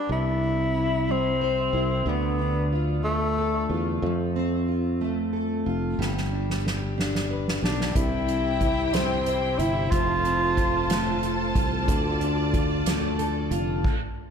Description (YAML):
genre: six-eight pop ballad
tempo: 61 BPM (dotted quarters)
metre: 6/8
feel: straight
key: C major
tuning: A4 = 439 Hz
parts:
  - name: warm tenor saxophone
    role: melody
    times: 0.0-3.7, 7.6-11.2 s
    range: A3 to F4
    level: -27 LUFS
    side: left 2 dB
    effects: diffuse ambient delay
  - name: fingerpicked plugged-in steel-string acoustic guitar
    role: accompaniment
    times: 0.0-13.9 s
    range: C3 to C5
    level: -28 LUFS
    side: equal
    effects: double-tracked left and right
  - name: sustaining fretless electric bass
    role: bass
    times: 0.1-13.8 s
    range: F1 to F2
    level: -29 LUFS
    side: equal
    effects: none
  - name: soft-mallet drum kit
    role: drums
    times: 6.0-14.0 s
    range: crash cymbal, hi-hat, kick drum, snare drum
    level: -28 LUFS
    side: right 1 dB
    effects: none
  - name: rich studio string section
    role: sustained chords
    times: 8.0-13.8 s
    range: E4 to A5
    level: -30 LUFS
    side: right 1 dB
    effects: none
room: wet plate reverb, RT60 2.2 s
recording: dreamy mix soaked in reverb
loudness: -22 LUFS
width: side -7 dB against mid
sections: 0.1-14.3 A section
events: drum fill 6.0-8.0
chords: 0.1 C; 2.1 Dm; 4.0 F; 6.0 G; 8.0 C; 9.9 F; 11.9 Dm